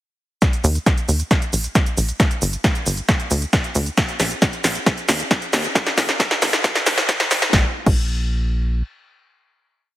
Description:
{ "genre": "uplifting trance", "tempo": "135 BPM", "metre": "4/4", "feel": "straight", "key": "unclear", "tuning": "A4 = 440 Hz", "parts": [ { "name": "big-room dance drum kit", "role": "drums", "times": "0.4-8.0 s", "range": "crash cymbal, hi-hat, shaker, snare drum", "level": "-19 LUFS", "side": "equal", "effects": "sidechain pumping on hats, sidechain pumping on perc, sidechain pumping on cymbals" }, { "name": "electronic kick drum", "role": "drums", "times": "0.4-8.0 s", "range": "none", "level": "-18 LUFS", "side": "equal", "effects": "none" }, { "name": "tight sequencer bass", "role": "bass", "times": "0.6-8.8 s", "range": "Eb1 to Eb2", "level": "-21 LUFS", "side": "equal", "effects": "sidechain pumping" } ], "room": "moderate digital room reverb, RT60 1.1 s", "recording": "heavily compressed radio sound, high-pass filter", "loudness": "-17 LUFS", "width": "side -15 dB against mid", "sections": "0.4-7.5 build; 7.5-10.0 final note", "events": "build-up 0.4-7.5; drum fill 0.4-7.5; filter sweep 0.4-7.5", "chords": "none" }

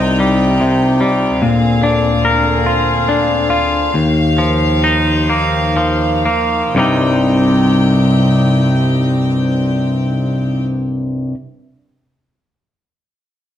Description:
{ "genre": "rock", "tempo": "39-49 BPM (dotted quarters)", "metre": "6/8", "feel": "straight", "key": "C minor", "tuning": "A4 = 437 Hz", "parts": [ { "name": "rich chamber string section", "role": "sustained chords", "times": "0.0-10.6 s", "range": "C2 to G5", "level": "-19 LUFS", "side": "right 1 dB", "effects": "none" }, { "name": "twangy electric guitar", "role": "arpeggios", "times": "0.0-11.3 s", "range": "C2 to Bb4", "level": "-13 LUFS", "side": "left 1 dB", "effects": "none" } ], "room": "wet stone room reverb, RT60 1.0 s", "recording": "band playing live in one room", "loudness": "-12 LUFS", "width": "side -10 dB against mid", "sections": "0.0-6.8 A section; 6.8-9.8 B section", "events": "slowing down 1.4-6.8", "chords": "0.0 Cm; 1.4 Bb7/D; 3.9 Ebadd9; 6.8 Cm" }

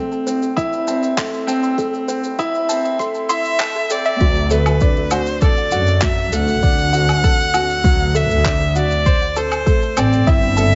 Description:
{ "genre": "piano and strings electronica", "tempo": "99 BPM", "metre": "4/4", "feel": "straight", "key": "unclear", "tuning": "A4 = 439 Hz", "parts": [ { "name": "warm upright piano", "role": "riff", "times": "0.0-10.8 s", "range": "F#3 to C5", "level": "-23 LUFS", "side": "equal", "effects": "delay" }, { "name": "electronic shaker, handclaps and woodblock", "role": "drums", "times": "0.1-10.8 s", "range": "none", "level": "-28 LUFS", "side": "equal", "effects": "none" }, { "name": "warbly dusty pluck", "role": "arpeggios", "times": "0.3-10.6 s", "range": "F#4 to C6", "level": "-28 LUFS", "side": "equal", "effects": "chorus, sidechain pumping, delay" }, { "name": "dark studio double bass section", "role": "bass", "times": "0.3-10.8 s", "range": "E1 to F#2", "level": "-23 LUFS", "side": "equal", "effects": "sidechain pumping, high-pass filter" }, { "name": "electronic kick drum", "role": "drums", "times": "0.6-10.4 s", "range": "none", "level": "-19 LUFS", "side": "equal", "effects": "none" }, { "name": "warm violin", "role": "melody", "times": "3.3-10.8 s", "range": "B4 to F#5", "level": "-22 LUFS", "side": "equal", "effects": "delay" } ], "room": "moderate echo chamber reverb, RT60 1.5 s", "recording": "high-pass filter, nothing above 7.6 kHz", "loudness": "-17 LUFS", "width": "mono", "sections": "0.0-4.2 A section; 4.2-10.8 B section", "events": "build-up 0.0-4.2; filter sweep on synth arpeggio sound 0.0-4.2; filter sweep 0.0-4.2; drop 4.2-10.8", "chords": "0.0 Am; 4.2 D; 9.1 Am" }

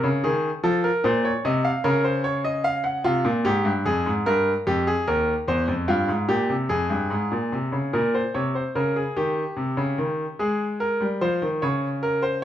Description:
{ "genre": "classical, baroque-style two-part invention for grand piano", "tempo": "49 BPM (dotted quarters)", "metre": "6/8", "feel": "straight", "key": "Bb minor", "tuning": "A4 = 441 Hz", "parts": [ { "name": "bright grand piano", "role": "solo", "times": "0.0-12.4 s", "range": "Eb2 to Gb5", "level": "-21 LUFS", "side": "equal", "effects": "none" } ], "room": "moderate large studio reverb, RT60 1.4 s", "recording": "minimal, uncompressed stereo recording", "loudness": "-21 LUFS", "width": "side -11 dB against mid", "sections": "0.0-7.9 A section; 7.9-12.4 B section", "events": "none", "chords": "0.0 Cm7 (rootless); 0.6 F7; 1.9 Bbm/Db; 3.0 Fm; 4.3 Ebadd9; 5.5 C7/E; 6.7 Fm; 7.9 Bbm; 9.2 Eb7; 10.4 Ab; 11.6 Bbmadd9/Db" }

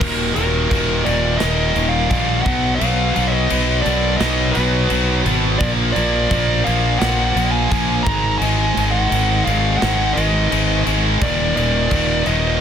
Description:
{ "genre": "heavy metal", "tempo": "86 BPM", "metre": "4/4", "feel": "straight", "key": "Eb harmonic minor", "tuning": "A4 = 445 Hz", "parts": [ { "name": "dark smooth lead guitar", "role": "melody", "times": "0.0-12.6 s", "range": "Bb4 to Bb5", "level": "-22 LUFS", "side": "equal", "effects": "overdrive" }, { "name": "high-gain lead guitar", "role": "second line", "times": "0.0-12.6 s", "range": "Gb4 to F5", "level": "-30 LUFS", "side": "right 2 dB", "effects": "distortion" }, { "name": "heavy high-gain guitar", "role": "riff", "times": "0.0-12.6 s", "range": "Eb2 to B3", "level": "-22 LUFS", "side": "left 12 dB", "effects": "distortion" }, { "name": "heavy high-gain guitar", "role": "riff", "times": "0.0-12.6 s", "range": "Eb2 to B3", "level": "-22 LUFS", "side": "right 14 dB", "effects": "distortion" }, { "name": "fuzz fingered electric bass", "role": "bass", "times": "0.0-12.6 s", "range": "Eb1 to B1", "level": "-21 LUFS", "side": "equal", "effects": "overdrive" }, { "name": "modern studio drum kit", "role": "drums", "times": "0.0-12.4 s", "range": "crash cymbal, kick drum, snare drum", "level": "-24 LUFS", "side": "left 1 dB", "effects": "soft clipping on kick" } ], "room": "little or no reverb", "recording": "dense, heavily limited modern master", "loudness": "-15 LUFS", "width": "side -8 dB against mid", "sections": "0.0-12.6 A section", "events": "half time 0.0-12.6", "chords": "0.0 Ebm; 2.5 B5; 5.6 Bb; 8.1 Abm; 11.2 Eb5" }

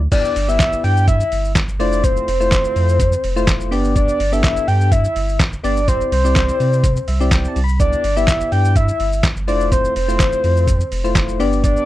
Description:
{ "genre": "dance-pop", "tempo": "125 BPM", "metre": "4/4", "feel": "straight", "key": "G mixolydian", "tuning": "A4 = 438 Hz", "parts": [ { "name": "saturated sub bass", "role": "bass", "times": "0.0-11.8 s", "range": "F1 to C3", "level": "-18 LUFS", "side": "equal", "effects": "sidechain pumping" }, { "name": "soft octave-layered synth lead", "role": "melody", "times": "0.1-11.9 s", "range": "C5 to G5", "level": "-19 LUFS", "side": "left 1 dB", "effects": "chorus, slapback echo" }, { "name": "soft electric-piano-like synth keys", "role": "accompaniment", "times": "0.1-11.9 s", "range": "A3 to B5", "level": "-23 LUFS", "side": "left 2 dB", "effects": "chorus, tremolo, sidechain pumping" }, { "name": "trip hop sampler-style drum kit", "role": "drums", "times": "0.1-11.9 s", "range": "crash cymbal, handclaps, hi-hat, kick drum, shaker, snare drum", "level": "-19 LUFS", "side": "equal", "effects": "none" } ], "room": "little or no reverb", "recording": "dry, close 1970s-style studio recording", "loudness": "-14 LUFS", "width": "side -15 dB against mid", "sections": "0.1-11.9 A section", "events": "synth keys fill 6.8-7.8", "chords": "0.1 G6; 1.8 Fmaj7; 3.7 G; 5.9 Cadd9; 7.8 G6; 9.5 Fmaj7" }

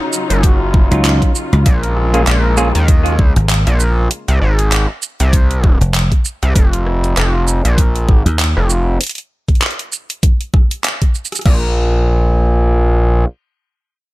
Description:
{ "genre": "glitch hop", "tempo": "98 BPM", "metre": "4/4", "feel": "swing 57% on 16ths", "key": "unclear", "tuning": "A4 = 442 Hz", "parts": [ { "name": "muted chamber string section", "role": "sustained chords", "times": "0.0-4.1 s", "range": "Db3 to F4", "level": "-22 LUFS", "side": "left 2 dB", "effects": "sidechain pumping" }, { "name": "pop drum kit", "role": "drums", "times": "0.1-11.6 s", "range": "crash cymbal, handclaps, hi-hat, rim click, shaker", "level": "-20 LUFS", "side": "right 1 dB", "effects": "overdrive" }, { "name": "gritty driven synth bass", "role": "bass", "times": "0.3-13.3 s", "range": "F1 to Eb2", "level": "-13 LUFS", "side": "equal", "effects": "tube saturation" }, { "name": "electronic kick drum", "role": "drums", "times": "0.4-11.6 s", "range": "none", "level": "-11 LUFS", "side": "equal", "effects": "overdrive" }, { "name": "mellow clav", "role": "stabs", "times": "0.9-2.7 s", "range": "Gb3 to Ab4", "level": "-20 LUFS", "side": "right 1 dB", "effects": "vintage 12-bit sampler grit, sidechain pumping, digital delay" }, { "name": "dry thumbed slap bass", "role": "bass", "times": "0.9-8.5 s", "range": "F1 to Eb2", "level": "-12 LUFS", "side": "equal", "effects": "none" } ], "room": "digital ambience", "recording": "none", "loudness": "-11 LUFS", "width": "side -19 dB against mid", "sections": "0.0-11.5 A section; 11.5-13.9 B section", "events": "drop 0.0-11.5", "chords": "0.0 Ebm9; 1.7 Bbm7; 4.1 Ab; 6.6 Fsus4; 9.0 N.C." }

